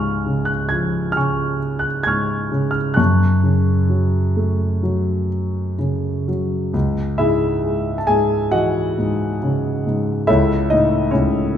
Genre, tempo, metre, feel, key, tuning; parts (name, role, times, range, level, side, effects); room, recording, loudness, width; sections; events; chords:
classical, lyrical solo piano; 61-71 BPM; 4/4; rubato; F# harmonic minor, C# minor from 6.7 s; A4 = 440 Hz
dark grand piano; solo; 0.0-11.6 s; C#2 to G#6; -16 LUFS; equal
wet recital hall reverb, RT60 1.4 s; recorded in a church or concert hall; -16 LUFS; side -9 dB against mid
0.0-6.7 A section; 6.7-11.6 B section
0.0 C#; 3.0 F#m; 6.7 C#madd9; 10.3 A/C#